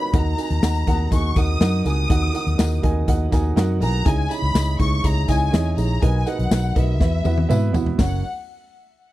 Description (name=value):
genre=piano-driven pop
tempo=122 BPM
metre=4/4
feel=straight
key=unclear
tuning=A4 = 440 Hz
part: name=warm studio violin section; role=melody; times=0.0-8.2 s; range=E5 to D#6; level=-28 LUFS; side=left 2 dB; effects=none
part: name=dark upright piano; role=accompaniment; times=0.0-8.2 s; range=F#2 to G#5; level=-25 LUFS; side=right 5 dB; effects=none
part: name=vintage muted fingered electric bass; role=bass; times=0.1-8.2 s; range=F#1 to G#2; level=-21 LUFS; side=left 1 dB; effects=none
part: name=natural country drum kit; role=drums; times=0.1-8.1 s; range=hi-hat, kick drum, snare drum, toms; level=-21 LUFS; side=left 1 dB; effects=none
part: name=tambourine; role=percussion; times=0.1-8.2 s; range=none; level=-41 LUFS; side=left 14 dB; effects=none
room=small room ambience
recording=dry, close 1970s-style studio recording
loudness=-17 LUFS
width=side -16 dB against mid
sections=0.0-8.0 A section; 8.0-9.1 B section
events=drum fill 7.0-8.0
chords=0.1 D#m; 4.1 C#madd9; 6.0 Bmaj7; 7.0 Esus2; 8.0 F#